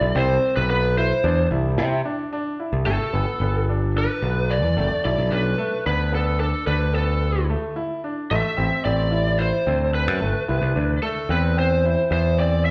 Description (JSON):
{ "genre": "progressive instrumental, band music in an uneven meter", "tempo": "110 BPM", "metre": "5/4", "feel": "straight", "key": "G major", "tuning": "A4 = 441 Hz", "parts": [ { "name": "lead guitar through a small cranked amp", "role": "melody", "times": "0.0-12.7 s", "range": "A4 to E5", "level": "-26 LUFS", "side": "equal", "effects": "overdrive" }, { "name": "clear baby grand piano", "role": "arpeggios", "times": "0.0-12.7 s", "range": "A3 to E4", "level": "-30 LUFS", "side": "equal", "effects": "none" }, { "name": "overdriven picked electric bass", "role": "bass", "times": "0.0-12.7 s", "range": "F#1 to C3", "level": "-24 LUFS", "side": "equal", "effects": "none" } ], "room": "wet large studio reverb, RT60 1.4 s", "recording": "band playing live in one room", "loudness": "-22 LUFS", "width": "mono", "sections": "0.0-2.9 A section; 2.9-12.7 B section", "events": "none", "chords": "0.2 Cmaj7; 2.9 Gadd9; 8.3 Am", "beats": "| 0.16 0.70 1.24 1.79 2.33 | 2.87 3.41 3.96 4.50 5.04 | 5.59 6.13 6.67 7.22 7.76 | 8.30 8.85 9.39 9.93 10.48 | 11.02 11.56 12.11 12.65" }